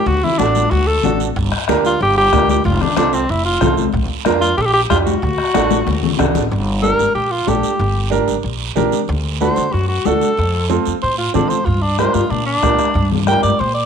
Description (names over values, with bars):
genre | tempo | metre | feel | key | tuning
latin, cumbia | 186 BPM | 4/4 | straight | unclear | A4 = 442 Hz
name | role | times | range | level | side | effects
bright alto saxophone | melody | 0.0-13.9 s | C4 to G5 | -17 LUFS | equal | none
upright bass | bass | 0.1-13.9 s | F1 to Bb2 | -20 LUFS | equal | none
guiro | percussion | 0.1-13.9 s | none | -30 LUFS | right 14 dB | none
congas | percussion | 0.2-13.6 s | none | -21 LUFS | left 12 dB | none
warm upright piano | accompaniment | 0.4-13.5 s | C4 to Bb4 | -21 LUFS | right 10 dB | none
bombo | percussion | 1.4-6.4, 11.7-13.4 s | none | -22 LUFS | left 1 dB | none
room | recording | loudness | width
moderate echo chamber reverb, RT60 1.3 s, small room ambience | 1960s-style stereo with parts hard left and right | -14 LUFS | side -7 dB against mid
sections
0.0-6.5 A section; 6.5-13.9 B section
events
drum fill 5.7-6.5; alto saxophone solo 6.5-13.9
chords
0.1 D; 1.4 Gm; 2.6 F; 3.9 Bb; 5.2 D; 6.5 Gm; 9.1 D7; 10.4 F; 11.7 Gm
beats
| 0.07 0.39 0.71 1.04 | 1.36 1.68 2.00 2.33 | 2.65 2.97 3.29 3.62 | 3.94 4.26 4.58 4.90 | 5.22 5.55 5.87 6.19 | 6.51 6.83 7.16 7.48 | 7.80 8.12 8.44 8.77 | 9.09 9.41 9.73 10.05 | 10.38 10.70 11.02 11.34 | 11.66 11.99 12.31 12.63 | 12.95 13.27 13.60